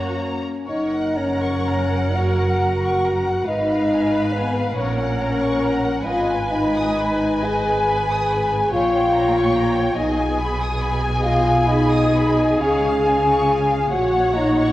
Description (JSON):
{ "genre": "classical, slow romantic movement for symphony orchestra", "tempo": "38-49 BPM (dotted quarters)", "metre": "6/8", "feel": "rubato", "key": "F# major", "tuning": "A4 = 441 Hz", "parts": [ { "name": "rich studio violin section", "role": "melody", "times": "0.0-14.7 s", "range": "F5 to A#5", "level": "-30 LUFS", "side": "left 2 dB", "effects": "none" }, { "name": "mellow hollow silver concert flute", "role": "second line", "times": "0.0-14.7 s", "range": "Cb5 to G#5", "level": "-24 LUFS", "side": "equal", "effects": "none" }, { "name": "warm studio violin section", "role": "second line", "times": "0.0-14.7 s", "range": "Cb5 to D#6", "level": "-29 LUFS", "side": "left 1 dB", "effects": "none" }, { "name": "clear studio viola section", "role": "accompaniment", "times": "0.0-14.7 s", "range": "A#3 to Db5", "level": "-28 LUFS", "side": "equal", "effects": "none" }, { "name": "mellow French horn section", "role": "sustained chords", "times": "0.0-14.7 s", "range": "Cb4 to G#4", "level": "-21 LUFS", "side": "left 1 dB", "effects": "none" }, { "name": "rich studio cello section", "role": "bass", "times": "0.0-14.7 s", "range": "F#2 to F#4", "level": "-26 LUFS", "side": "right 2 dB", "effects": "none" }, { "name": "rich studio double bass section", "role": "bass", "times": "0.0-14.7 s", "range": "F#1 to F#2", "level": "-27 LUFS", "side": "right 2 dB", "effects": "none" } ], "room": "moderate scoring stage reverb, RT60 1.9 s", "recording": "worn, warbling old tape, cassette tape, warbly pitch drift", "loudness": "-17 LUFS", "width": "side -15 dB against mid", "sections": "0.7-14.7 A section", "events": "none", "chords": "0.0 F#; 3.5 Fdim/Ab; 4.8 F#/A#; 6.1 G#m; 8.7 Gdim/Bb; 10.0 G#m/B; 12.6 C#; 13.9 F#/A#", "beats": "| 0.67 2.16 | 3.48 4.77 | 6.07 7.45 | 8.74 9.98 | 11.24 12.62 | 13.92" }